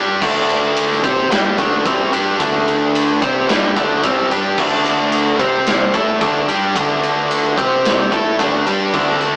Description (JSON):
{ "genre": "hard rock", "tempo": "110 BPM", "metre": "4/4", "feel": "straight", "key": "unclear", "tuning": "A4 = 438 Hz", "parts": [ { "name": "distorted electric guitar", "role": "riff", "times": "0.0-9.4 s", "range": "C3 to C5", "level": "-17 LUFS", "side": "equal", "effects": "overdrive" }, { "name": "distorted electric guitar", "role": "riff", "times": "0.0-9.4 s", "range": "C3 to C5", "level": "-20 LUFS", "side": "equal", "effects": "overdrive" }, { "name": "overdriven semi-hollow guitar", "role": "riff", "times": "0.0-9.4 s", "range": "C3 to C5", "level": "-23 LUFS", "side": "equal", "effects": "none" }, { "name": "fingered electric bass", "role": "bass", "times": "0.0-9.4 s", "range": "C2 to C3", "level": "-32 LUFS", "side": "equal", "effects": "none" }, { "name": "big rock drum kit", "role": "drums", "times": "0.2-9.3 s", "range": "crash cymbal, kick drum, ride cymbal, snare drum", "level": "-18 LUFS", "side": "equal", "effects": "none" } ], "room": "moderate studio reverb, RT60 0.6 s", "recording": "rough rehearsal-room recording, tube saturation, small speaker sound", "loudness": "-13 LUFS", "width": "side -37 dB against mid", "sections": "0.0-9.4 A section", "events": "none", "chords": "0.0 D5; 5.4 C5; 5.9 D5; 7.6 C5; 8.1 D5" }